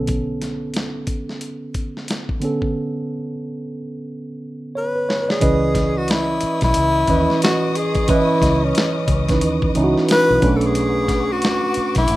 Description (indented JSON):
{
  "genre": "R&B, neo-soul",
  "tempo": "90 BPM",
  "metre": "4/4",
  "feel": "swing 61% on 16ths",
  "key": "unclear",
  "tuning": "A4 = 437 Hz",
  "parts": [
    { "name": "tine electric piano", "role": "accompaniment", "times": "0.0-12.2 s", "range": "D3 to D#5", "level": "-21 LUFS", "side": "right 2 dB", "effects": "none" },
    { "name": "vintage muted fingered electric bass", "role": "bass", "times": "0.0-12.2 s", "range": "A1 to D#2", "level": "-23 LUFS", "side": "equal", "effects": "none" },
    { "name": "dusty soul sampler-style drum kit", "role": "drums", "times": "0.1-12.2 s", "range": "hi-hat, kick drum, snare drum", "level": "-22 LUFS", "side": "equal", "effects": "none" },
    { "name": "breathy tenor saxophone", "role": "melody", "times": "4.8-12.2 s", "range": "C#4 to B4", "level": "-20 LUFS", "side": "left 2 dB", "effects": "none" },
    { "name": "warm studio string section", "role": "sustained chords", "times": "5.4-12.2 s", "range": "B4 to D#6", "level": "-28 LUFS", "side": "left 2 dB", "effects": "none" }
  ],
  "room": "little or no reverb",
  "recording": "rough home demo mix",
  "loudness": "-16 LUFS",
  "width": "side -16 dB against mid",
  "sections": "0.0-5.4 A section; 5.4-12.2 B section",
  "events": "drum fill 4.1-5.4",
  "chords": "0.0 Bm9; 5.4 C#m9; 10.4 Bm9",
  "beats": "| 0.09 0.75 1.42 2.09 | 2.75 3.42 4.09 4.75 | 5.42 6.09 6.75 7.42 | 8.09 8.75 9.42 10.09 | 10.75 11.42 12.09"
}